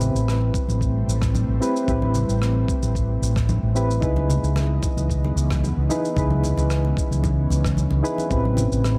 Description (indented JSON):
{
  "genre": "sunset chillout",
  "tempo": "112 BPM",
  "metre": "4/4",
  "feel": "straight",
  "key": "unclear",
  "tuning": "A4 = 440 Hz",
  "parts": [
    { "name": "soft electric-piano-like synth keys", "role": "accompaniment", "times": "0.0-9.0 s", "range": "C4 to B4", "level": "-28 LUFS", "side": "equal", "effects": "chorus, tremolo, tape echo" },
    { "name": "ethereal airy pad", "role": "sustained chords", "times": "0.0-9.0 s", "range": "C#3 to D#5", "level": "-32 LUFS", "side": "equal", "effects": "ensemble chorus, built-in reverb" },
    { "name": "mellow fretless electric bass", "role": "bass", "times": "0.0-9.0 s", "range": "A1 to C#2", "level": "-24 LUFS", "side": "equal", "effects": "none" },
    { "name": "shaker and rim click", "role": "drums", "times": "0.0-9.0 s", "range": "none", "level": "-37 LUFS", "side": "equal", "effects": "none" },
    { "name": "congas", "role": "percussion", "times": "0.0-9.0 s", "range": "none", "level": "-33 LUFS", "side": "equal", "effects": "none" },
    { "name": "electronic kick drum", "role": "drums", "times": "0.5-8.4 s", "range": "none", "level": "-28 LUFS", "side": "equal", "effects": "none" }
  ],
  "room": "moderate recital hall reverb, RT60 1.6 s, small room ambience",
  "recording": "dark, warm production",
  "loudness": "-22 LUFS",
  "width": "mono",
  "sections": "0.0-9.0 A section",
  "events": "none",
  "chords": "0.0 Am9; 4.0 C#m9; 8.3 Am9"
}